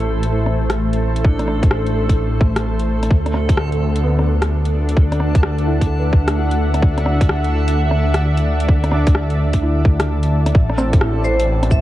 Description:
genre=future garage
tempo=129 BPM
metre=4/4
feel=swing 65% on 16ths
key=unclear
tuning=A4 = 440 Hz
part: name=felt-muted upright piano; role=accompaniment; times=0.0-11.8 s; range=A3 to B4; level=-27 LUFS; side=right 1 dB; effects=sidechain pumping, analog delay
part: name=granular cloud pad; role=sustained chords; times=0.0-11.8 s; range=A3 to G5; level=-24 LUFS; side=equal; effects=built-in reverb, vintage 12-bit sampler grit, sidechain pumping
part: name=swelling detuned saw bass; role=bass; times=0.0-11.8 s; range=A1 to D2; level=-18 LUFS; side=equal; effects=none
part: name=garage drum kit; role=drums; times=0.0-11.8 s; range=cabasa, hi-hat, rim click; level=-24 LUFS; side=left 1 dB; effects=none
part: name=backwards swelling texture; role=texture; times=0.0-10.6 s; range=A4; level=-32 LUFS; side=right 1 dB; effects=built-in reverb
part: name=electronic kick drum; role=drums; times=1.2-11.8 s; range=none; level=-13 LUFS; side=equal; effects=none
part: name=vibraphone with medium hard mallets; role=melody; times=11.2-11.8 s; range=C5 to E5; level=-20 LUFS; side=right 1 dB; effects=none
room=digital ambience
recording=cassette tape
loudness=-14 LUFS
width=side -14 dB against mid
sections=0.0-10.5 A section; 10.5-11.8 B section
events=none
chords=0.0 Am7; 3.1 Dadd9; 10.5 Am7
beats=0.32 0.78 | 1.25 1.71 2.18 2.64 | 3.11 3.57 4.04 4.50 | 4.97 5.43 5.90 6.36 | 6.83 7.29 7.76 8.22 | 8.69 9.15 9.62 10.08 | 10.55 11.01 11.48

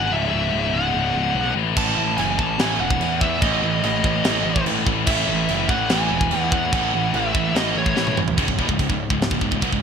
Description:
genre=heavy metal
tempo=145 BPM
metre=4/4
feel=straight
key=unclear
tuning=A4 = 438 Hz
part: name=high-gain lead guitar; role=melody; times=0.0-8.2 s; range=C#5 to A5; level=-25 LUFS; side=right 2 dB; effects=distortion, digital delay
part: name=scooped high-gain guitar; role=riff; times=0.0-9.8 s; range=C#2 to F#3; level=-24 LUFS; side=left 11 dB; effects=distortion
part: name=fuzz picked electric bass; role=bass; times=0.0-9.8 s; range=C#1 to E2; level=-26 LUFS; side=equal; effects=overdrive
part: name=high-gain distorted guitar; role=riff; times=1.8-9.8 s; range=C#2 to A3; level=-26 LUFS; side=right 14 dB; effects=distortion
part: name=tight metal drum kit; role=drums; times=1.8-9.8 s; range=china cymbal, crash cymbal, kick drum, snare drum, toms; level=-24 LUFS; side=right 1 dB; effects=none
room=light reverb, studio ambience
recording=bright 1980s-style digital production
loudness=-18 LUFS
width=side -6 dB against mid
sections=0.0-8.4 A section; 8.4-9.8 B section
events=drum fill 8.0-8.4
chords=0.0 C#m; 1.6 A5; 8.4 C#m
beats=| 0.12 0.53 0.95 1.36 | 1.77 2.19 2.60 3.01 | 3.43 3.84 4.25 4.67 | 5.08 5.49 5.90 6.32 | 6.73 7.14 7.55 7.97 | 8.38 8.79 9.21 9.62

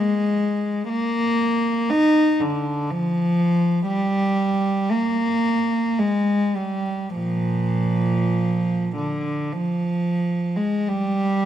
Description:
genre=classical, free, expressive piece for unaccompanied cello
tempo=38-63 BPM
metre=3/4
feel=rubato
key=unclear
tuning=A4 = 438 Hz
part: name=clear cello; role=solo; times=0.0-11.5 s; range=Bb2 to Eb4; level=-19 LUFS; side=equal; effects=none
room=moderate recital hall reverb, RT60 1.9 s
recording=dark, warm production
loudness=-19 LUFS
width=side -11 dB against mid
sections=0.0-10.9 A section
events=none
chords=none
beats=| 0.89 1.91 2.90 | 3.88 4.91 5.99 | 7.16 8.36 9.54 | 10.87

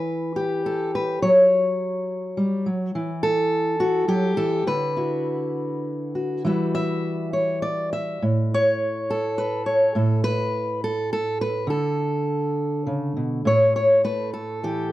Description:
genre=folk, solo fingerstyle acoustic guitar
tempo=103 BPM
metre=3/4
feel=rubato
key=unclear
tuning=A4 = 439 Hz
part: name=fingerpicked steel-string acoustic guitar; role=solo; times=0.0-14.9 s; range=A2 to E5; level=-20 LUFS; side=equal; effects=none
room=light reverb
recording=dark, warm production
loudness=-20 LUFS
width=side -15 dB against mid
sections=0.0-13.5 A section; 13.5-14.9 B section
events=none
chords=0.0 Em; 1.2 F#5; 2.9 A5/E; 4.7 Dadd9; 6.5 Emadd9; 8.2 N.C.; 11.7 D5; 13.5 A5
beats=0.05 0.64 | 1.22 1.79 2.37 | 2.94 3.52 4.09 | 4.67 5.26 5.86 | 6.46 7.05 7.65 | 8.23 8.81 9.38 | 9.95 10.53 11.11 | 11.68 12.26 12.87 | 13.46 14.05 14.64

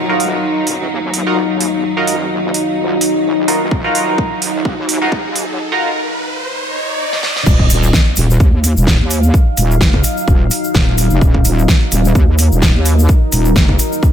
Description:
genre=bass house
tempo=128 BPM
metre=4/4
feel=swing 56% on 16ths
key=Eb minor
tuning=A4 = 440 Hz
part: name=deep dark ambient pad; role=sustained chords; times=0.0-14.1 s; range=Gb3 to F5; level=-20 LUFS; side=left 1 dB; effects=chorus, built-in reverb, sidechain pumping
part: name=wobble bass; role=bass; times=0.0-13.8 s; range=Eb1 to Eb2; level=-15 LUFS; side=equal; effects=chorus, overdrive, sidechain pumping, high-pass filter
part: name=riser, swell and impact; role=sound effects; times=2.0-9.3 s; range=none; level=-23 LUFS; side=equal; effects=none
part: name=rich studio string section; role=texture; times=0.0-5.6 s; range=Gb3 to Eb4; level=-21 LUFS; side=left 1 dB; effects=sidechain pumping
part: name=band-passed chord stab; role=stabs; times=0.1-5.9 s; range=Eb4 to Bb4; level=-19 LUFS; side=right 2 dB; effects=phaser, lush chorus, sidechain pumping, tape echo
part: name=big-room dance drum kit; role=drums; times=0.2-13.9 s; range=crash cymbal, hi-hat, snare drum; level=-18 LUFS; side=right 1 dB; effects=none
part: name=electronic kick drum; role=drums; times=3.7-14.1 s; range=none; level=-12 LUFS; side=equal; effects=none
part: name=tube shaker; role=percussion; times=7.5-14.1 s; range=none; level=-23 LUFS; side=left 4 dB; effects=none
room=digital ambience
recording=high-pass filter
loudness=-11 LUFS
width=side -9 dB against mid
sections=0.0-7.5 A section; 7.5-14.1 B section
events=build-up 0.0-7.5; filter sweep 0.0-7.5; riser 2.0-7.5; drum fill 3.7-5.6, 7.1-7.5; swell 6.5-7.5; drop 7.5-14.1; impact 7.5-9.3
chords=0.0 Ebmadd9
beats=0.43 0.90 1.37 | 1.84 2.31 2.78 3.25 | 3.71 4.18 4.65 5.12 | 5.59 6.06 6.53 7.00 | 7.46 7.93 8.40 8.87 | 9.34 9.81 10.28 10.75 | 11.21 11.68 12.15 12.62 | 13.09 13.56 14.03

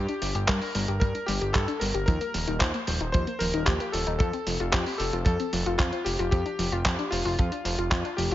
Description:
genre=italo disco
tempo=113 BPM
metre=4/4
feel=straight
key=unclear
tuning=A4 = 440 Hz
part: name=clear electric grand piano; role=melody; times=0.0-8.3 s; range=F4 to C5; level=-31 LUFS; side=left 2 dB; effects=ping-pong delay
part: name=warbly dusty pluck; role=arpeggios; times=0.0-8.3 s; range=F3 to G4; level=-32 LUFS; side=left 2 dB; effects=chorus, tape echo
part: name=fat analog bass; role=bass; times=0.0-8.3 s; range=Eb1 to G2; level=-30 LUFS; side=equal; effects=none
part: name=dusty soul sampler-style drum kit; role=drums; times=0.1-8.3 s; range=handclaps, hi-hat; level=-30 LUFS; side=right 1 dB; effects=gated reverb
part: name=kick drum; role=drums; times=0.5-8.0 s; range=none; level=-25 LUFS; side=equal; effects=none
room=light reverb, small room reverb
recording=nothing above 7.5 kHz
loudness=-24 LUFS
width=side -13 dB against mid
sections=0.0-8.3 A section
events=none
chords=0.0 Gm; 2.1 Ebsus2; 4.2 F; 6.3 Fsus2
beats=0.48 1.01 1.54 | 2.08 2.61 3.14 3.67 | 4.20 4.73 5.26 5.79 | 6.32 6.86 7.39 7.92

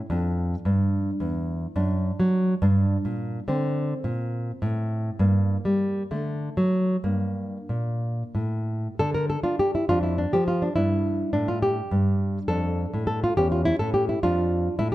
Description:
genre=classical, baroque-style dance for nylon-string guitar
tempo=60-73 BPM (dotted quarters)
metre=6/8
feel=rubato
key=G minor, D minor from 9.0 s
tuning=A4 = 441 Hz
part: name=nylon-string guitar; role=solo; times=0.0-14.9 s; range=E2 to Bb4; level=-22 LUFS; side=equal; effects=none
room=light reverb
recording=close, detailed microphones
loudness=-22 LUFS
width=side -15 dB against mid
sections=0.0-9.0 A section; 9.0-14.9 A section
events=none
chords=0.1 Dm/F; 1.8 D/F#; 2.6 Gm; 3.5 D5; 5.2 Gm; 6.1 D; 7.1 Gm; 9.0 N.C.; 9.9 Dm/F; 10.8 G5; 12.5 Dm/F; 13.4 A/E; 14.2 Dm/F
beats=| 0.09 0.93 | 1.78 2.62 | 3.47 4.33 | 5.21 6.12 | 7.06 8.04 | 9.01 9.90 | 10.77 11.62 | 12.50 13.38 | 14.22

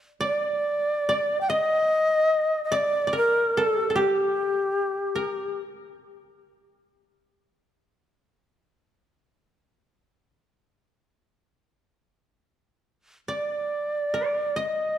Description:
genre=japanese traditional, Japanese chamber music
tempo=73 BPM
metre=4/4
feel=uneven beats, rubato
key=D miyako bushi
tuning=A4 = 440 Hz
part: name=breathy bright long shakuhachi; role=melody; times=0.2-5.6, 13.3-15.0 s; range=G4 to G5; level=-23 LUFS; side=equal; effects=none
part: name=koto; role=second line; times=0.2-7.0, 13.3-15.0 s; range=G4 to Eb5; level=-29 LUFS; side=right 1 dB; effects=none
room=moderate concert hall reverb, RT60 2.6 s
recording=none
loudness=-22 LUFS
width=side -10 dB against mid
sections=0.2-15.0 A section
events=none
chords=none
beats=| 0.23 1.07 1.90 2.73 | 3.56 4.37 5.17 5.97 | 6.77 7.57 8.38 9.17 | 9.96 10.77 11.60 12.45 | 13.31 14.16

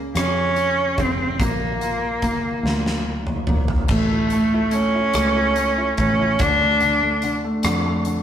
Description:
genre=six-eight pop ballad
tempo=48 BPM (dotted quarters)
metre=6/8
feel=straight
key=unclear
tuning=A4 = 440 Hz
part: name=clear baby grand piano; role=accompaniment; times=0.0-8.2 s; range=Db3 to F4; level=-24 LUFS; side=equal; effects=none
part: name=fingered electric bass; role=bass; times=0.0-8.2 s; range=E1 to F2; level=-26 LUFS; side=equal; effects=none
part: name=bright cello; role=melody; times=0.2-7.3 s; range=A3 to D4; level=-20 LUFS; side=right 1 dB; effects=none
part: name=huge arena drum kit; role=drums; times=0.2-8.2 s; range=crash cymbal, hi-hat, kick drum, rim click, snare drum, toms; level=-25 LUFS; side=equal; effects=none
room=wet stone room reverb, RT60 1.3 s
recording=rough rehearsal-room recording, tube saturation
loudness=-18 LUFS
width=side -9 dB against mid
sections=0.0-3.9 A section; 3.9-8.2 B section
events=drum fill 2.6-3.9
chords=0.0 Db; 1.4 Bb; 3.9 A; 6.4 Dm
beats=0.16 | 1.40 2.65 | 3.90 5.16 | 6.41 7.65

